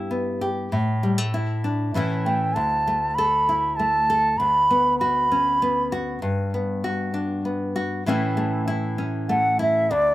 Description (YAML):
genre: folk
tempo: 98 BPM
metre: 3/4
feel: straight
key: unclear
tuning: A4 = 440 Hz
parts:
  - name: nylon-string guitar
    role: accompaniment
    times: 0.0-10.1 s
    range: D2 to A4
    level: -24 LUFS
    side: left 1 dB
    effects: none
  - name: bright bansuri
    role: melody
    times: 2.3-5.9, 9.3-10.1 s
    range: D5 to B5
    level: -19 LUFS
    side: right 1 dB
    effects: none
room: little or no reverb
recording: recorded outdoors, with no room sound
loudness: -20 LUFS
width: side -15 dB against mid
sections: 0.0-9.9 A section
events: none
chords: 0.0 G6; 0.7 Asus4; 1.9 A; 2.6 Dsus2; 4.4 Bmadd9/D; 6.2 Gmaj7; 8.1 A